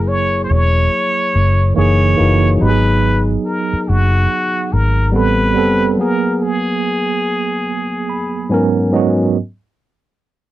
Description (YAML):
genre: R&B, neo-soul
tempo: 71 BPM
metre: 4/4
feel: swing 62% on 16ths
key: G# minor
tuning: A4 = 438 Hz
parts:
  - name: trumpet with plunger mute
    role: melody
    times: 0.0-8.5 s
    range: F#4 to C#5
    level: -18 LUFS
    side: left 1 dB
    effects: none
  - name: tine electric piano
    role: accompaniment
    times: 0.0-9.4 s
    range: G#2 to B5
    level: -16 LUFS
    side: right 2 dB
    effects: medium stereo tremolo
  - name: vintage muted fingered electric bass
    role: bass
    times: 0.0-5.9 s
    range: E1 to A1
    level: -14 LUFS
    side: left 1 dB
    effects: none
room: light reverb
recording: dry, close 1970s-style studio recording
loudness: -13 LUFS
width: side -15 dB against mid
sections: 0.0-9.4 A section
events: tine electric piano fill 7.7-9.4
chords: 0.0 F#9; 1.8 F#13; 2.6 G#m7; 5.1 Am9; 6.0 G#m9; 8.5 G#m11